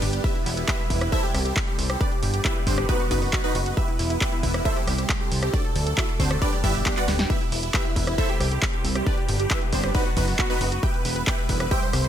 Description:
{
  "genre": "uplifting trance",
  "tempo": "136 BPM",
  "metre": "4/4",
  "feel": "straight",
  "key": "E minor",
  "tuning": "A4 = 440 Hz",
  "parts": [
    { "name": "supersaw chords", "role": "melody", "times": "0.0-12.1 s", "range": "B3 to G5", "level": "-28 LUFS", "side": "right 2 dB", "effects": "phaser, sidechain pumping, ping-pong delay" },
    { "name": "wide unison pluck", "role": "second line", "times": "0.0-12.1 s", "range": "E4 to G5", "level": "-34 LUFS", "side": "right 2 dB", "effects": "sidechain pumping, dub echo" },
    { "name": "lush unison pad", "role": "sustained chords", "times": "0.0-12.1 s", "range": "F#3 to E5", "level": "-32 LUFS", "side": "right 1 dB", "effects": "chorus, phaser, sidechain pumping" },
    { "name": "plucky analog bass", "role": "bass", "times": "0.0-12.1 s", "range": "D1 to D2", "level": "-26 LUFS", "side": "equal", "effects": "tube saturation, sidechain pumping" },
    { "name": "punchy analog drum machine", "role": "drums", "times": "0.0-12.1 s", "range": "handclaps, hi-hat, rim click, snare drum", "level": "-29 LUFS", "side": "equal", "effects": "none" },
    { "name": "electronic kick drum", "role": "drums", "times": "0.2-11.8 s", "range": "none", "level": "-25 LUFS", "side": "equal", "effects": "none" }
  ],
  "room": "digital ambience",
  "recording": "none",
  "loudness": "-21 LUFS",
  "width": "side -10 dB against mid",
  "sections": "0.0-12.1 A section",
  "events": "drum fill 7.1",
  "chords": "0.2 Em; 1.1 C6; 2.0 G; 2.9 B/F#; 3.8 Em; 4.7 C6; 5.5 D; 6.4 G; 7.3 Em; 8.2 C6; 9.1 G; 9.9 B/F#; 10.8 Em",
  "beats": "| 0.24 0.68 1.12 1.56 | 2.01 2.45 2.89 3.33 | 3.77 4.21 4.65 5.09 | 5.54 5.98 6.42 6.86 | 7.30 7.74 8.18 8.62 | 9.06 9.51 9.95 10.39 | 10.83 11.27 11.71"
}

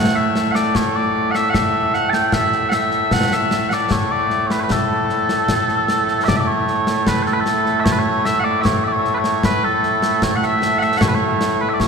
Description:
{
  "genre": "scottish traditional, Scottish pipe music",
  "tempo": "76 BPM",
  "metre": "2/4",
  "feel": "straight",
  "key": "A major",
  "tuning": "A4 = 440 Hz",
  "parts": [
    { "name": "mellow small bagpipes", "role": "melody", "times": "0.0-11.9 s", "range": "A2 to A5", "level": "-16 LUFS", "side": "equal", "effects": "none" },
    { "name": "concert snare drum and concert bass drum", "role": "drums", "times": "0.4-11.9 s", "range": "none", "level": "-21 LUFS", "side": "left 1 dB", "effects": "none" }
  ],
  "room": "wet cathedral reverb, RT60 4.7 s",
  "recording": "recorded in a church or concert hall",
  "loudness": "-15 LUFS",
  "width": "side -5 dB against mid",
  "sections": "0.0-6.3 A section; 6.3-11.9 B section",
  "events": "none",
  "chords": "none",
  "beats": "0.75 | 1.54 2.33 | 3.12 3.91 | 4.70 5.49 | 6.28 7.07 | 7.85 8.64 | 9.43 10.22 | 11.01 11.80"
}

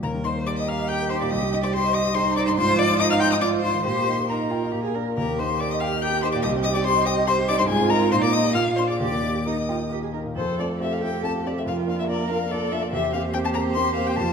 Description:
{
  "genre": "quick classical-period movement for piano quartet",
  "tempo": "142 BPM",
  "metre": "3/4",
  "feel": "rubato",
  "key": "Eb major, F major from 10.4 s",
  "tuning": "A4 = 440 Hz",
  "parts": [
    { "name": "warm violin", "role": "melody", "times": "0.0-14.3 s", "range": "C5 to G6", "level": "-26 LUFS", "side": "left 6 dB", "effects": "none" },
    { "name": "warm violin", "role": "second line", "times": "0.0-14.3 s", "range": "Ab4 to G5", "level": "-29 LUFS", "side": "left 3 dB", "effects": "none" },
    { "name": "warm concert grand piano", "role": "accompaniment", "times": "0.0-14.3 s", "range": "C2 to C6", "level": "-25 LUFS", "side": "equal", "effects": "none" },
    { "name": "dark cello", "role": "second line", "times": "0.5-14.3 s", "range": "Eb4 to Bb4", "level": "-27 LUFS", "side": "right 9 dB", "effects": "none" }
  ],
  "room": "wet recital hall reverb, RT60 1.3 s",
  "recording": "none",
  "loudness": "-20 LUFS",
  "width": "side -6 dB against mid",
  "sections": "0.0-10.4 A section; 10.4-14.3 B section",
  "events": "none",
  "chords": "0.0 Eb; 1.3 Cm; 2.6 Fm7/Ab; 3.8 Eb/Bb; 4.7 Bb; 5.2 Eb; 6.4 Cm; 7.7 Fm7/Ab; 8.1 Eb/Bb; 8.6 Bb7; 9.0 Eb; 10.4 F; 11.7 Bb/F; 12.9 C7/E",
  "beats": "| 0.04 0.47 0.89 | 1.32 1.74 2.16 | 2.58 3.00 3.42 | 3.85 4.29 4.73 | 5.17 5.60 6.02 | 6.44 6.86 7.28 | 7.70 8.12 8.55 | 9.00 9.46 9.91 | 10.36 10.80 11.23 | 11.66 12.08 12.50 | 12.92 13.34 13.76 | 14.18"
}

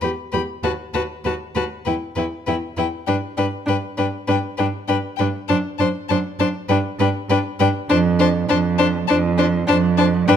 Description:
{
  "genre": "quick classical-period movement for string quartet",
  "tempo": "100 BPM",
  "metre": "4/4",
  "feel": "straight",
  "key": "unclear",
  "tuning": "A4 = 440 Hz",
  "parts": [
    { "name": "rich violin", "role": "melody", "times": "0.0-10.4 s", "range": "G5 to B5", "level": "-26 LUFS", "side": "left 15 dB", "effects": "none" },
    { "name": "clear violin", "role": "second line", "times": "0.0-10.4 s", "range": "B4 to C5", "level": "-25 LUFS", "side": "left 6 dB", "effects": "none" },
    { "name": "rich viola", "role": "accompaniment", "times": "0.0-10.4 s", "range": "D4 to G4", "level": "-23 LUFS", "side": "equal", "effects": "none" },
    { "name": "rich cello", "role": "bass", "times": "0.0-10.4 s", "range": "D#2 to G2", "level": "-22 LUFS", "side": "right 5 dB", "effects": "none" }
  ],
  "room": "light reverb",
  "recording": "close, detailed microphones",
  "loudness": "-18 LUFS",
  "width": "side -8 dB against mid",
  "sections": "0.0-10.4 A section",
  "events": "none",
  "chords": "0.0 Em; 0.6 B/D#; 1.9 Em; 3.1 G; 5.5 D/F#; 6.7 G5; 7.9 Dm7/F",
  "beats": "0.02 | 0.63 1.24 1.85 2.46 | 3.07 3.67 4.28 4.88 | 5.49 6.10 6.70 7.30 | 7.90 8.49 9.09 9.69 | 10.29"
}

